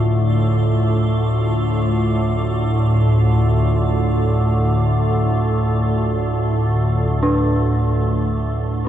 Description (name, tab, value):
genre	dark ambient drone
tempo	free time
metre	none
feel	none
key	D minor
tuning	A4 = 439 Hz
part	dark detuned synth bell	arpeggios	0.0-8.9 s	D4 to A4	-22 LUFS	right 1 dB	chorus, ping-pong delay
part	organ-like drone	drone	0.0-8.9 s	D2 to A2	-16 LUFS	equal	ensemble chorus, built-in reverb
part	icy glass pad	texture	0.0-8.9 s	F4	-31 LUFS	right 3 dB	chorus, built-in reverb
room	wet cathedral reverb, RT60 6.0 s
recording	worn, warbling old tape, cassette tape, warbly pitch drift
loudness	-16 LUFS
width	side -11 dB against mid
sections	0.0-8.6 A section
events	fade-out on ambient pad 0.0-8.6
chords	0.0 Dm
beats	free time